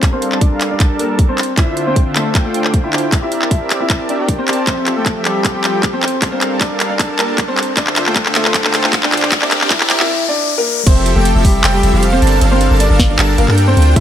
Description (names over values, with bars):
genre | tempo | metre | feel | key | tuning
future bass | 155 BPM | 4/4 | half-time | F major | A4 = 442 Hz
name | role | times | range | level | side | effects
warm baby grand piano | melody | 0.0-14.0 s | G3 to E5 | -19 LUFS | left 1 dB | sidechain pumping, low-pass filter, digital delay
soft supersaw | riff | 0.0-14.0 s | D3 to A5 | -19 LUFS | right 1 dB | sidechain pumping, low-pass filter
electronic kick drum | drums | 0.0-14.0 s | none | -14 LUFS | equal | none
trap drum kit | drums | 0.0-14.0 s | crash cymbal, handclaps, hi-hat, snare drum | -17 LUFS | equal | none
riser | sound effects | 7.4-10.9 s | none | -22 LUFS | left 7 dB | none
airy dreamy lead | arpeggios | 10.9-14.0 s | E5 to A5 | -24 LUFS | equal | chorus, sidechain pumping, digital delay
long sustained 808-style bass | bass | 10.9-14.0 s | F1 to G2 | -12 LUFS | equal | sidechain pumping
room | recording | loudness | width
light reverb, digital ambience | high-pass filter | -12 LUFS | side -10 dB against mid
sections
0.0-10.9 A section; 10.9-14.0 B section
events
build-up 0.0-10.9; drum fill 0.0-10.1; filter sweep on supersaw synth 0.0-10.9; filter sweep on grand piano 0.0-10.9; filter sweep 0.0-10.9; riser 7.4-10.9; break 10.1-10.9; drop 10.9-14.0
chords
0.0 Gm7; 1.4 Dm9; 3.1 C9; 4.7 Fmaj9; 6.0 Gm7; 7.6 Dm9; 9.3 C9; 10.9 Fmaj9; 12.2 Gm7